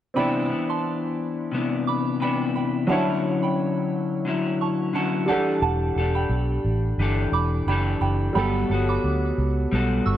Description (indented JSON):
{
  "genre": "indie pop, bedroom pop",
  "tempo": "88 BPM",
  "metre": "4/4",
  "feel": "swing 55% on 16ths",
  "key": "unclear",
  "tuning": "A4 = 438 Hz",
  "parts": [
    { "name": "warm upright piano", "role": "accompaniment", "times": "0.1-10.2 s", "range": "F#3 to F#5", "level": "-28 LUFS", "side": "right 1 dB", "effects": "none" },
    { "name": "soft synth bell", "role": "second line", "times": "0.2-10.2 s", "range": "F#5 to E6", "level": "-30 LUFS", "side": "right 6 dB", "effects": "phaser, wide subtle chorus, tape echo" },
    { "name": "electric guitar through a small old amp", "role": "accompaniment", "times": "0.2-10.2 s", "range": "C3 to A4", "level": "-24 LUFS", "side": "left 3 dB", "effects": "wide subtle chorus, warbly pitch drift" },
    { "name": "vintage muted fingered electric bass", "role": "bass", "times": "5.6-10.2 s", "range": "E1 to D2", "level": "-24 LUFS", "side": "right 1 dB", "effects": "none" }
  ],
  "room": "light reverb, digital ambience",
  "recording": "dark, warm production",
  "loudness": "-21 LUFS",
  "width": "side -11 dB against mid",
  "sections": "0.2-10.2 A section",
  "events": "none",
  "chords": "0.2 Cmaj9; 2.9 Dmaj9; 5.3 Em11; 8.4 Gmaj9"
}